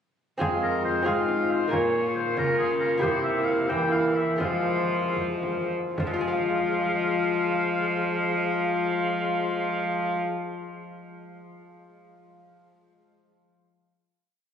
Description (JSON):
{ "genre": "classical, renaissance-style consort dance", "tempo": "70-92 BPM (dotted quarters)", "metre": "6/8", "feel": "straight", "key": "F harmonic minor", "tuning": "A4 = 440 Hz", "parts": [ { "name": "warm oboe", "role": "melody", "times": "0.4-10.2 s", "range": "Ab4 to G5", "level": "-30 LUFS", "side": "left 1 dB", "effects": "none" }, { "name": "warm viola", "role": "second line", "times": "0.4-10.2 s", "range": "E4 to F4", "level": "-31 LUFS", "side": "left 4 dB", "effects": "none" }, { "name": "dark bassoon", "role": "accompaniment", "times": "0.4-10.2 s", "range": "Ab3 to Bb3", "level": "-32 LUFS", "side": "right 1 dB", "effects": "none" }, { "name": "lute", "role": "accompaniment", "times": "0.4-10.8 s", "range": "F2 to F5", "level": "-30 LUFS", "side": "equal", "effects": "none" }, { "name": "rich cello", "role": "bass", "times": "0.4-10.2 s", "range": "F2 to F3", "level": "-29 LUFS", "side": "equal", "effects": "none" }, { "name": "frame drum", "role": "percussion", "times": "0.4-6.3 s", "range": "none", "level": "-38 LUFS", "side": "equal", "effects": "none" } ], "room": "wet cathedral reverb, RT60 5.7 s", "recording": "recorded on a phone in the room, studio ambience, compression", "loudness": "-23 LUFS", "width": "side -8 dB against mid", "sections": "0.4-6.0 A section; 6.0-9.4 final chord", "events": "slowing down 2.4-6.0", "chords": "0.4 Fm; 1.7 Bbm; 3.0 C7; 4.4 Fm" }